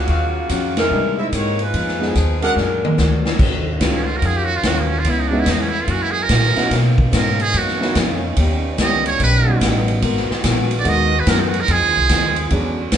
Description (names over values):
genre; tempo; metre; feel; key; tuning
jazz, big band swing; 145 BPM; 4/4; swing 65% on 8ths; Eb minor; A4 = 438 Hz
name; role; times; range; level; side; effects
mellow saxophone section; melody; 0.0-3.2 s; C#3 to Db5; -21 LUFS; left 1 dB; none
upright bass; bass; 0.0-13.0 s; Ab1 to C3; -20 LUFS; equal; none
picked acoustic archtop guitar; accompaniment; 0.1-13.0 s; Bb2 to C#5; -26 LUFS; left 5 dB; none
clear trumpet section; stabs; 0.1-2.5 s; D4 to Gb5; -24 LUFS; right 1 dB; none
swinging big-band drum kit; drums; 0.1-13.0 s; crash cymbal, hi-hat, kick drum, ride cymbal, snare drum, toms; -21 LUFS; equal; none
warm upright piano; accompaniment; 0.9-12.8 s; Gb3 to G#4; -24 LUFS; equal; none
mellow saxophone section; sustained chords; 3.4-13.0 s; Db3 to Gb4; -28 LUFS; right 2 dB; none
trumpet with metal mute; melody; 4.0-12.5 s; Bb3 to Eb5; -20 LUFS; right 5 dB; none
room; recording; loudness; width
moderate large studio reverb, RT60 0.9 s; band playing live in one room, nothing above 10.3 kHz; -15 LUFS; side -9 dB against mid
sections
0.0-3.4 A section; 3.4-13.0 B section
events
band accent 0.7; drum fill 2.6-3.4; muted trumpet solo 3.4-13.0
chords
0.1 Ebm9; 0.9 C7alt; 1.7 Fm7b5; 2.6 Bbaug7; 3.4 Ebm9; 5.1 Dbm7; 5.9 Gb9; 6.7 Bmaj9; 8.4 Eb7alt; 10.0 Abm9; 11.7 Fm7